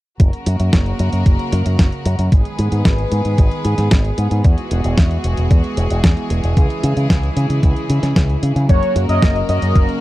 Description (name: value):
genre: italo disco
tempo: 113 BPM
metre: 4/4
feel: straight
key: unclear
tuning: A4 = 440 Hz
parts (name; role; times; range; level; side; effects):
- rich studio string section; sustained chords; 0.2-10.0 s; C#3 to B4; -23 LUFS; equal; none
- fingered electric bass with an envelope filter; bass; 0.2-9.8 s; E1 to C#3; -17 LUFS; equal; none
- clean 12-bit digital drum machine; drums; 0.2-10.0 s; hi-hat, snare drum; -19 LUFS; equal; none
- electronic kick drum; drums; 0.2-9.9 s; none; -13 LUFS; equal; none
- wide unison lead; melody; 8.7-9.9 s; C#5 to D#5; -19 LUFS; left 1 dB; lush chorus, tape echo
- analog synth brass; stabs; 8.7-10.0 s; F#3 to A#4; -23 LUFS; left 2 dB; chorus
room: little or no reverb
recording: dry, close 1970s-style studio recording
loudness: -13 LUFS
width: side -16 dB against mid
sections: 0.2-10.0 A section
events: none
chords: 0.2 F#; 2.3 G#m; 4.4 Eadd9; 6.6 C#m; 8.7 F#